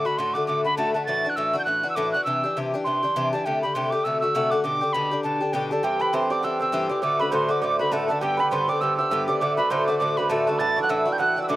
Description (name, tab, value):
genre	celtic folk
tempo	202 BPM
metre	4/4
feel	swing 58% on 8ths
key	unclear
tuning	A4 = 440 Hz
part	mellow wooden whistle	melody	0.0-11.6 s	G5 to A6	-24 LUFS	right 1 dB	none
part	Irish bouzouki	accompaniment	0.0-11.6 s	G2 to G4	-25 LUFS	left 2 dB	none
part	hammered dulcimer	second line	5.7-11.6 s	G4 to A5	-25 LUFS	right 4 dB	slapback echo
room	little or no reverb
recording	recorded outdoors, with no room sound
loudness	-21 LUFS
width	side -16 dB against mid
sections	0.0-5.8 A section; 5.8-11.6 A section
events	none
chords	0.0 D; 1.1 Dadd9; 2.3 Cadd9; 3.5 D7sus4; 4.0 D7; 4.6 G; 5.8 C; 7.0 D; 8.2 G; 9.4 D; 10.6 Dadd9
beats	0.18 0.48 0.77 | 1.07 1.37 1.67 1.97 | 2.26 2.56 2.86 3.16 | 3.45 3.75 4.05 4.35 | 4.64 4.94 5.24 5.54 | 5.84 6.13 6.43 6.73 | 7.03 7.33 7.62 7.92 | 8.22 8.51 8.81 9.11 | 9.41 9.70 10.00 10.30 | 10.60 10.89 11.19 11.49